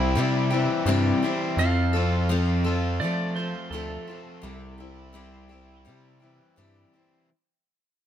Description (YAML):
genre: rock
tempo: 84 BPM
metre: 4/4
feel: straight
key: C major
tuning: A4 = 440 Hz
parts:
  - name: picked steel-string acoustic guitar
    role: accompaniment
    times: 0.0-7.3 s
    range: C3 to A4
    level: -28 LUFS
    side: left 5 dB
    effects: none
  - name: crunchy overdriven guitar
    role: riff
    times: 0.0-7.3 s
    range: F2 to F4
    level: -30 LUFS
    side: right 1 dB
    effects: none
  - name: gritty driven synth bass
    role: bass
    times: 0.0-6.8 s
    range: C2 to F3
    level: -26 LUFS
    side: equal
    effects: none
  - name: pedal steel guitar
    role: second line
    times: 1.6-5.8 s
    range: A4 to F5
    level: -32 LUFS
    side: right 3 dB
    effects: none
room: light reverb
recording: none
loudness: -22 LUFS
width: side -10 dB against mid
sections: 0.0-7.3 A section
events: fade-out 0.0-7.3; pedal steel guitar solo 0.0-7.3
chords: 0.0 C; 1.6 F; 4.4 C